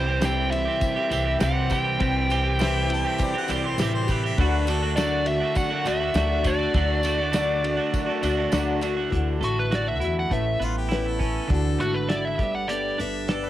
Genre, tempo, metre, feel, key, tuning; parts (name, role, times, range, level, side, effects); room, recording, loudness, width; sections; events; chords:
folk rock and heartland rock; 101 BPM; 4/4; straight; D mixolydian, D major from 9.1 s; A4 = 440 Hz
nasal lead guitar with a parked wah; melody; 0.0-13.0 s; F#4 to G5; -27 LUFS; equal; overdrive, cassette tape
picked acoustic archtop guitar; accompaniment; 0.0-13.5 s; C3 to B4; -29 LUFS; left 7 dB; cassette tape
twelve-string electric guitar; riff; 0.0-13.5 s; A2 to A4; -28 LUFS; right 6 dB; cassette tape
upright bass; bass; 0.0-13.5 s; G1 to E2; -27 LUFS; equal
cloth-damped thuddy drum kit; drums; 0.2-13.4 s; hi-hat, kick drum, ride cymbal, snare drum; -29 LUFS; equal; cassette tape
tambourine; percussion; 0.2-9.0 s; -42 LUFS; left 7 dB
bright harmonica; second line; 2.6-5.0, 10.6-13.5 s; F4 to A5; -33 LUFS; left 6 dB; cassette tape
light reverb; home recording on cassette; -21 LUFS; side -13 dB against mid
0.0-9.1 A section; 9.1-13.5 B section
lead electric guitar solo 9.1-13.5
0.0 C; 4.4 D; 9.1 Dadd9; 10.3 Aadd9; 11.5 Dadd9; 12.4 Gadd9